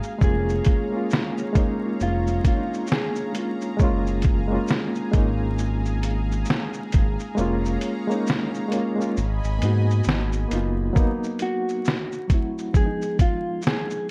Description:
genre	lo-fi hip hop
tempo	67 BPM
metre	4/4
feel	swing 59% on 16ths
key	unclear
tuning	A4 = 440 Hz
part	reed electric piano	accompaniment	0.0-14.1 s	F3 to F#4	-29 LUFS	equal	overdrive, fast tremolo
part	lush unison pad	sustained chords	0.0-10.9 s	G#4 to B5	-38 LUFS	equal	chorus
part	lo-fi sampler-style drum kit	drums	0.0-14.1 s	hi-hat, kick drum, shaker, snare drum	-25 LUFS	equal	vintage 12-bit sampler grit
part	mellow electric guitar	melody	0.2-3.3, 11.4-14.1 s	E#4 to G#4	-31 LUFS	equal	none
part	smooth gliding synth bass	bass	0.2-10.9 s	E#1 to G#2	-26 LUFS	equal	none
room	light reverb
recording	dark, warm production, vinyl crackle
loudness	-23 LUFS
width	mono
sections	0.0-11.0 A section; 11.0-14.1 B section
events	kick muted 7.4-11.0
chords	0.2 A#m7/E#; 3.8 F#maj9; 7.4 A#m7/E#; 9.2 G#m7; 11.0 Bmaj7/F#; 11.9 F#m7b5; 12.8 Fm7b5

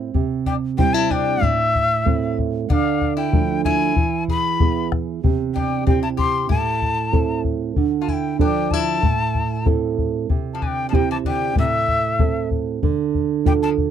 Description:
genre	andean folk, Andean ensemble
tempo	95 BPM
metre	2/4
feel	straight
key	unclear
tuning	A4 = 444 Hz
part	nylon-string guitar	accompaniment	0.0-13.9 s	A2 to A4	-21 LUFS	right 8 dB	none
part	bombo	percussion	0.1-13.9 s	none	-22 LUFS	left 2 dB	none
part	quena	melody	0.5-13.7 s	E5 to C6	-22 LUFS	left 4 dB	none
part	lap resonator guitar	second line	0.5-13.7 s	C3 to G#4	-27 LUFS	left 11 dB	none
room	light reverb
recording	dry, close 1970s-style studio recording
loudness	-18 LUFS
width	side -9 dB against mid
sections	0.1-10.3 A section; 10.3-13.9 A section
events	none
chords	0.1 C; 1.4 Am; 2.7 Dm; 4.0 E; 5.2 C; 6.5 Am; 7.8 Dm; 9.0 Am; 10.3 C; 11.6 Am; 12.8 Dm

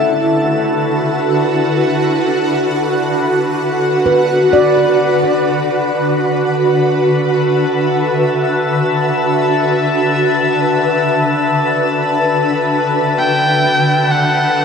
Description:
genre	ambient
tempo	free time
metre	none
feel	none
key	D major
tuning	A4 = 439 Hz
part	shimmering ambient pad	sustained chords	0.0-14.6 s	D3 to A5	-13 LUFS	equal	chorus, built-in reverb, phaser
part	handpan	arpeggios	0.0-8.3 s	A3 to E5	-20 LUFS	equal	tape echo
part	drifting glass-harmonics texture	texture	0.0-14.6 s	A5	-22 LUFS	left 3 dB	chorus, built-in reverb
part	rich electric violin	melody	13.2-14.6 s	F#5 to G5	-18 LUFS	equal	none
room	wet shimmer reverb, RT60 6.7 s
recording	dark, warm production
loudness	-12 LUFS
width	side -6 dB against mid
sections	0.0-5.9 A section; 5.9-14.6 B section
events	fade-out on synth texture 0.0-5.9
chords	0.0 Bm/D; 5.9 D6; 13.2 G/D

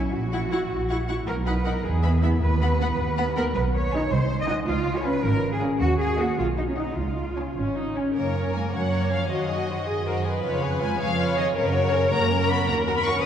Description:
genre	quick classical-period movement for string orchestra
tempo	106 BPM (dotted quarters)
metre	6/8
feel	straight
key	B major, F# major from 3.5 s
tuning	A4 = 439 Hz
part	clear studio double bass section	bass	0.0-13.3 s	G#1 to F#2	-26 LUFS	right 2 dB	none
part	rich studio cello section	bass	0.0-13.3 s	C#3 to D#5	-28 LUFS	right 1 dB	none
part	rich studio violin section	melody	0.3-13.3 s	B4 to C#6	-30 LUFS	left 4 dB	none
part	clear studio violin section	second line	0.3-13.1 s	A#3 to G#5	-33 LUFS	left 2 dB	none
part	clear studio viola section	accompaniment	0.3-13.3 s	A#3 to C#5	-28 LUFS	left 1 dB	none
room	wet church reverb, RT60 2.5 s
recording	dark, warm production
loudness	-22 LUFS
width	side -9 dB against mid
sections	0.0-8.2 A section; 8.2-13.3 B section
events	none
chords	0.1 F#7/A#; 1.3 B; 1.8 E; 2.4 B/D#; 3.5 G#m/B; 4.1 G#7/B#; 4.7 C#; 5.8 D#m; 6.4 B; 7.0 C#; 8.2 F#; 9.3 G#7/F#; 10.4 C#7/E#; 11.6 F#; 12.7 D#m

